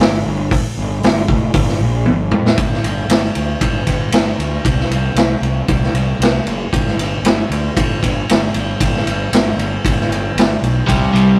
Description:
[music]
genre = blues rock power trio and southern rock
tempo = 116 BPM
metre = 4/4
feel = straight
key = unclear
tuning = A4 = 440 Hz
[part]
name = fuzz fingered electric bass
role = bass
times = 0.0-11.3 s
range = F1 to F2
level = -21 LUFS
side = equal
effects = overdrive
[part]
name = vintage drum kit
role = drums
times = 0.0-11.3 s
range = hi-hat, kick drum, ride cymbal, snare drum, toms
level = -18 LUFS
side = equal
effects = none
[part]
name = overdriven electric guitar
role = riff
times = 10.9-11.4 s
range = C3 to G3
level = -14 LUFS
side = equal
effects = none
[sound]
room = light reverb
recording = rough rehearsal-room recording, tube saturation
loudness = -16 LUFS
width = mono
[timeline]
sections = 0.0-2.6 A section; 2.6-11.4 B section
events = drum fill 2.1-2.6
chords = 0.0 G5; 4.6 N.C.; 10.9 C5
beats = 0.00 | 0.52 1.03 1.54 2.06 | 2.58 3.09 3.61 4.13 | 4.65 5.17 5.68 6.20 | 6.72 7.24 7.76 8.28 | 8.80 9.32 9.84 10.36 | 10.88

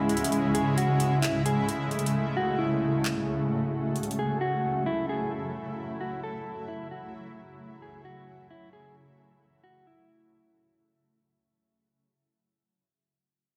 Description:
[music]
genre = hip hop, atmospheric cloud-rap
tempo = 132 BPM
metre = 4/4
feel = half-time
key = unclear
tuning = A4 = 442 Hz
[part]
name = granular cloud pad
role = sustained chords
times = 0.0-11.2 s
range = C#3 to F#4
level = -30 LUFS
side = equal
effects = built-in reverb
[part]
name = trap drum kit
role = drums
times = 0.1-4.2 s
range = handclaps, hi-hat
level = -36 LUFS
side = equal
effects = none
[part]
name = mellow electric guitar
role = melody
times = 0.5-11.2 s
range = E4 to A4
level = -34 LUFS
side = equal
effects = spring reverb, low-pass filter, digital delay
[sound]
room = light reverb, digital ambience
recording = none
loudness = -28 LUFS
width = mono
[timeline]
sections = 0.0-11.2 A section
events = break 0.0-4.0; fade-out 0.0-11.2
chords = 0.3 Amaj7; 4.0 F#m7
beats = | 0.32 0.78 1.23 1.68 | 2.14 2.59 3.05 3.50 | 3.96 4.41 4.87 5.32 | 5.78 6.23 6.68 7.14 | 7.59 8.05 8.50 8.96 | 9.41 9.87 10.32 10.78

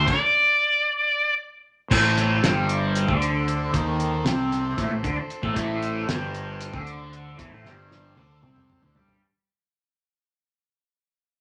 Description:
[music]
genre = psychedelic rock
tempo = 230 BPM (eighths)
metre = 7/8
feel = straight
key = A minor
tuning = A4 = 440 Hz
[part]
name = octave-fuzz lead guitar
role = melody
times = 0.0-1.3 s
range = D5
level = -21 LUFS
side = equal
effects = wah, distortion
[part]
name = combo organ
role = sustained chords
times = 0.0-9.2 s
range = C4 to C5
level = -38 LUFS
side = equal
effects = none
[part]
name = fuzz guitar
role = riff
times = 0.0-9.2 s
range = G2 to G4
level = -27 LUFS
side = equal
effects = distortion, phaser
[part]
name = fuzz fingered electric bass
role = bass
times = 0.0-9.2 s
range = G1 to G2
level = -31 LUFS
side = equal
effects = overdrive
[part]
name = cloth-damped thuddy drum kit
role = drums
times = 0.1-9.2 s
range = crash cymbal, hi-hat, kick drum, snare drum, toms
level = -29 LUFS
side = equal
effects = none
[sound]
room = moderate studio reverb, RT60 0.8 s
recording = none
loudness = -23 LUFS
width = mono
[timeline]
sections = 0.0-1.9 A section; 1.9-9.2 B section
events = stop 0.1-1.9; fade-out 1.9-9.2; drum fill 7.6-9.2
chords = 0.0 N.C.; 1.9 Am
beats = | 0.07 0.33 0.59 0.86 1.12 1.38 1.64 | 1.90 2.17 2.43 2.69 2.95 3.21 3.47 | 3.73 3.99 4.25 4.52 4.78 5.04 5.30 | 5.56 5.82 6.08 6.34 6.60 6.86 7.12 | 7.38 7.65 7.91 8.17 8.43 8.69 8.95

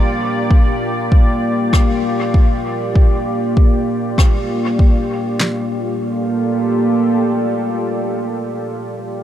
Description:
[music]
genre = ambient dub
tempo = 98 BPM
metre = 4/4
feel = swing 53% on 16ths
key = G minor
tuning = A4 = 440 Hz
[part]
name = deep dark ambient pad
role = sustained chords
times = 0.0-8.6 s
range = Bb3 to D5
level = -17 LUFS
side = equal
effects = chorus, built-in reverb
[part]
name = deep house drum kit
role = drums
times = 0.5-5.6 s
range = handclaps, kick drum, snare drum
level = -12 LUFS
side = equal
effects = none
[part]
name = rim click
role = drums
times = 1.7-4.3 s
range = none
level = -28 LUFS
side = left 2 dB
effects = dub echo
[sound]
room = moderate huge ambient reverb, RT60 8.9 s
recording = dreamy mix soaked in reverb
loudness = -14 LUFS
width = side -11 dB against mid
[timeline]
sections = 0.0-5.4 A section; 5.4-7.8 B section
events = none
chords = 0.0 Gm7; 5.4 Gm9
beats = | 0.50 1.11 1.73 2.34 | 2.95 3.56 4.18 4.79 | 5.40 6.01 6.63 7.24

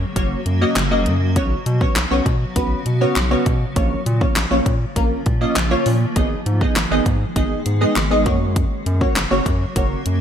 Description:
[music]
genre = dance-pop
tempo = 100 BPM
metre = 4/4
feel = straight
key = F# major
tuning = A4 = 438 Hz
[part]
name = granular cloud pad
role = sustained chords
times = 0.0-10.2 s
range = C#3 to G#4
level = -27 LUFS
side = equal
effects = built-in reverb, sidechain pumping
[part]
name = round analog bass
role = bass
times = 0.0-10.2 s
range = F#1 to B2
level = -20 LUFS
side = equal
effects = sidechain pumping
[part]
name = wavetable chord stab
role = accompaniment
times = 0.2-10.0 s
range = A#3 to D#5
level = -21 LUFS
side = right 1 dB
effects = lush chorus, sidechain pumping
[part]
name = pop drum kit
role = drums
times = 0.2-10.2 s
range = handclaps, hi-hat, kick drum, snare drum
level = -21 LUFS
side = equal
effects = gated reverb
[sound]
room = light reverb, digital ambience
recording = bright 1980s-style digital production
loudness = -16 LUFS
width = side -8 dB against mid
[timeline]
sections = 0.0-10.2 A section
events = none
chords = 0.0 F#; 1.4 Bsus2; 3.8 A#m; 6.2 G#m; 8.3 F#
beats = 0.16 0.76 | 1.36 1.96 2.56 3.16 | 3.76 4.36 4.96 5.56 | 6.16 6.76 7.36 7.96 | 8.56 9.16 9.76

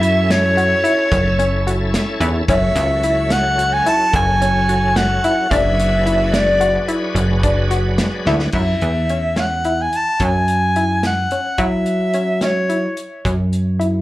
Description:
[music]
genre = progressive instrumental, band music in an uneven meter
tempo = 218 BPM (eighths)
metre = 11/8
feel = straight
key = unclear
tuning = A4 = 440 Hz
[part]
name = mellow soprano saxophone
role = melody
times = 0.0-13.0 s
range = C#5 to A5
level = -18 LUFS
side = equal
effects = slapback echo, tape echo
[part]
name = bright tonewheel organ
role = accompaniment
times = 0.0-8.5 s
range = F#3 to B4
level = -24 LUFS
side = equal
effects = chorus vibrato, slow rotary speaker, slapback echo
[part]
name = analog pluck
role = arpeggios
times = 0.0-14.0 s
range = C#4 to F#4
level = -23 LUFS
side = left 2 dB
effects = chorus, slapback echo
[part]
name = plucky analog bass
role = bass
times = 0.0-14.0 s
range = F#1 to F#3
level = -18 LUFS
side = equal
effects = none
[part]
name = warm soul drum kit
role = drums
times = 0.0-13.9 s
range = crash cymbal, hi-hat, kick drum, snare drum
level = -23 LUFS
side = equal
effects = none
[sound]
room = light reverb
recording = live gig heard through the venue's PA, club reverb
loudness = -14 LUFS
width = side -16 dB against mid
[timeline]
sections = 0.0-8.5 A section; 8.5-14.0 B section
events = drum fill 8.3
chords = 0.0 A/F#; 5.5 G#dim/F#; 8.5 Esus2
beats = 0.02 0.29 0.57 0.84 1.12 1.39 1.67 1.94 2.21 | 2.49 2.76 3.04 3.31 3.59 3.86 4.14 4.41 4.69 4.96 5.24 | 5.51 5.79 6.06 6.34 6.61 6.89 7.16 7.44 7.71 7.99 8.27 | 8.54 8.82 9.09 9.37 9.65 9.92 10.20 10.48 10.76 11.03 11.31 | 11.59 11.86 12.14 12.42 12.70 12.97 13.25 13.53 13.81

